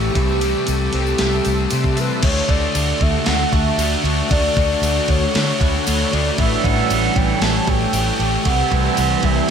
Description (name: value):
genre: rock, shoegaze and dream pop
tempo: 116 BPM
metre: 4/4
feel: straight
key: D major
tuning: A4 = 440 Hz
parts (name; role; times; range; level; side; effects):
- hollow clarinet-like synth lead; melody; 0.0-9.5 s; G4 to A5; -23 LUFS; right 2 dB; chorus, phaser, digital delay
- shimmering ambient pad; sustained chords; 0.0-9.5 s; D4 to C#6; -27 LUFS; equal; chorus, built-in reverb
- picked plugged-in twelve-string acoustic guitar; arpeggios; 0.0-9.5 s; E3 to G4; -28 LUFS; right 11 dB; lush chorus, digital delay
- thick fuzz guitar; riff; 0.0-9.5 s; A2 to D4; -23 LUFS; left 14 dB; distortion, analog chorus
- twangy electric guitar; riff; 0.0-9.5 s; A2 to A4; -26 LUFS; right 13 dB; reverse reverb
- vintage muted fingered electric bass; bass; 0.0-9.4 s; A1 to D3; -22 LUFS; equal; none
- gated 80s digital drum machine; drums; 0.2-9.4 s; crash cymbal, kick drum, ride cymbal, snare drum; -21 LUFS; equal; gated reverb, gated reverb snare
- tambourine; percussion; 0.2-9.1 s; none; -32 LUFS; left 16 dB; none
room: light reverb, digital ambience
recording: faint mains hum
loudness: -15 LUFS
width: side -7 dB against mid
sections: 0.0-2.2 A section; 2.2-9.5 B section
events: none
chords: 0.2 C6; 2.2 Dmaj7; 6.4 A7; 8.5 C6